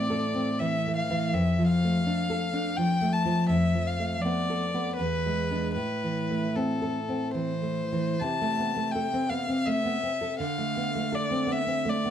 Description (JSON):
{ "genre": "romantic duo for violin and classical guitar", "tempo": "67-84 BPM", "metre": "3/4", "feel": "rubato", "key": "A minor", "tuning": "A4 = 441 Hz", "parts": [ { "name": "clear violin", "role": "melody", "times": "0.0-12.1 s", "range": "A4 to A5", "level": "-30 LUFS", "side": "left 3 dB", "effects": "slapback echo" }, { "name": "nylon-string guitar", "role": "accompaniment", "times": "0.0-12.1 s", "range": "E2 to A4", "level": "-27 LUFS", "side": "right 1 dB", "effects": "none" } ], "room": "light reverb", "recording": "dark, warm production", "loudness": "-25 LUFS", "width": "side -9 dB against mid", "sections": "0.0-8.2 A section; 8.2-12.1 B section", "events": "none", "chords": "0.0 Am; 1.3 Dm/F; 3.5 Bm7b5/F; 5.0 E7; 5.8 Am; 8.2 Am/C; 10.4 Dm7" }